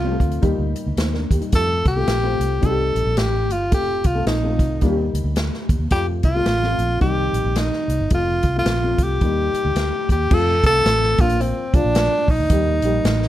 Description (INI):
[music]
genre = uptempo 1960s-style soul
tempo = 109 BPM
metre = 4/4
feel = swing 60% on 8ths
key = F mixolydian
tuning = A4 = 440 Hz
[part]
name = warm tenor saxophone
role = melody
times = 0.0-13.3 s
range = C4 to A4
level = -21 LUFS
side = equal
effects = none
[part]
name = dark upright piano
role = accompaniment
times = 0.0-13.3 s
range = Eb3 to C5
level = -26 LUFS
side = left 3 dB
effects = none
[part]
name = vintage muted fingered electric bass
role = bass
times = 0.0-13.3 s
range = F1 to F2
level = -22 LUFS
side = equal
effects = none
[part]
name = swinging big-band drum kit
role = drums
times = 0.2-13.3 s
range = crash cymbal, hi-hat, kick drum, snare drum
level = -22 LUFS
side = equal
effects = none
[sound]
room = light reverb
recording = dark, warm production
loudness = -17 LUFS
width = side -13 dB against mid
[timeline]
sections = 0.0-10.3 A section; 10.3-13.3 B section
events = none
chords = 0.4 Eb; 1.5 F; 2.6 Cm; 3.7 F; 4.8 Eb; 5.9 F; 7.0 Cm; 8.1 F; 9.2 Eb; 10.3 F; 11.1 Bb; 12.5 Eb